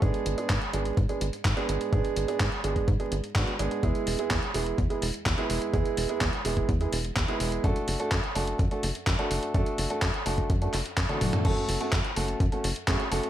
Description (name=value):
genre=italo disco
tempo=126 BPM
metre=4/4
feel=straight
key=F# minor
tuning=A4 = 435 Hz
part: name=warm concert grand piano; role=stabs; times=0.0-13.3 s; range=G#3 to A4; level=-30 LUFS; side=right 3 dB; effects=ping-pong delay
part: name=tight sequencer bass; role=bass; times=0.0-13.2 s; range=E1 to G#2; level=-31 LUFS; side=equal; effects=none
part: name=electronic kick drum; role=drums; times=0.0-13.0 s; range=none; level=-28 LUFS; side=equal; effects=overdrive
part: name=gated 80s digital drum machine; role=drums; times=0.0-13.3 s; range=crash cymbal, handclaps, hi-hat, toms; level=-32 LUFS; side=equal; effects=gated reverb, overdrive
room=light reverb, digital ambience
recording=vinyl crackle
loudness=-25 LUFS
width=side -12 dB against mid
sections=0.0-11.4 A section; 11.4-13.3 B section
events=drum fill 11.1-11.4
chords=0.0 G#dim; 3.8 E; 7.6 D/F#; 11.4 F#m